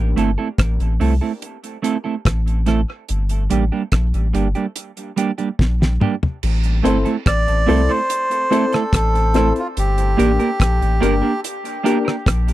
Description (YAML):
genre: dub reggae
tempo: 72 BPM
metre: 4/4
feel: straight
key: A phrygian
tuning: A4 = 440 Hz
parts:
  - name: soft dub sub bass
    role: bass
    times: 0.0-12.5 s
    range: G1 to C2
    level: -18 LUFS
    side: equal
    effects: none
  - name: semi-hollow electric guitar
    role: accompaniment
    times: 0.2-12.2 s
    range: G3 to Bb4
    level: -22 LUFS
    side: right 6 dB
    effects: wide subtle chorus, high-pass filter, dub echo
  - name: damped 70s drum kit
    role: drums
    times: 0.2-12.5 s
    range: crash cymbal, hi-hat, kick drum, rim click, snare drum, toms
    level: -20 LUFS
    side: equal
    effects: none
  - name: dark upright piano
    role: stabs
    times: 6.8-12.1 s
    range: Bb3 to C5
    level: -23 LUFS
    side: left 4 dB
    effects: high-pass filter, dub echo
  - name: melodica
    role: melody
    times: 7.3-11.4 s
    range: F4 to D5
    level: -21 LUFS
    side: equal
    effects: dub echo
room: little or no reverb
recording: dry, close 1970s-style studio recording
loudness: -16 LUFS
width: side -15 dB against mid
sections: 0.0-6.4 A section; 6.4-12.5 B section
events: break 0.0-6.4; drum fill 5.6-6.4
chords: 0.0 Am; 3.1 Gm; 6.4 Am; 9.8 Gm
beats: 0.58 1.42 2.25 | 3.09 3.92 4.76 5.59 | 6.43 7.26 8.10 8.93 | 9.76 10.60 11.43 12.27